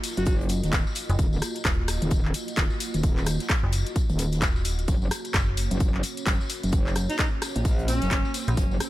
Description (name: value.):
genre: bass house.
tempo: 130 BPM.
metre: 4/4.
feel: swing 60% on 16ths.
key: Eb minor.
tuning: A4 = 435 Hz.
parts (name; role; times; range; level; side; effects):
dark analog pad; sustained chords; 0.0-8.9 s; Bb3 to Eb5; -36 LUFS; right 2 dB; chorus, sidechain pumping.
house drum kit; drums; 0.0-8.9 s; handclaps, hi-hat, rim click; -30 LUFS; left 1 dB; none.
open jazz drum kit; drums; 0.0-8.9 s; hi-hat, snare drum; -42 LUFS; left 4 dB; none.
tambourine; percussion; 0.0-8.9 s; none; -38 LUFS; left 5 dB; none.
warm alto saxophone; melody; 0.2-0.4, 7.1-8.3 s; Db4 to Gb4; -33 LUFS; equal; tape echo.
metallic wobble bass; bass; 0.2-8.8 s; Eb1 to Bb1; -26 LUFS; equal; distortion, chorus, overdrive, sidechain pumping.
electronic kick drum; drums; 0.3-8.7 s; none; -25 LUFS; equal; none.
metallic FM bass; bass; 1.1-5.7, 8.5-8.6 s; Eb1 to Bb1; -25 LUFS; equal; tube saturation, sidechain pumping.
room: small room reverb.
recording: none.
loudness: -23 LUFS.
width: side -16 dB against mid.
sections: 0.0-8.9 A section.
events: none.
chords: 0.0 Ebmadd9; 4.9 Gb.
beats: 0.27 0.73 | 1.19 1.65 2.11 2.57 | 3.04 3.50 3.96 4.42 | 4.88 5.34 5.80 6.27 | 6.73 7.19 7.65 8.11 | 8.57.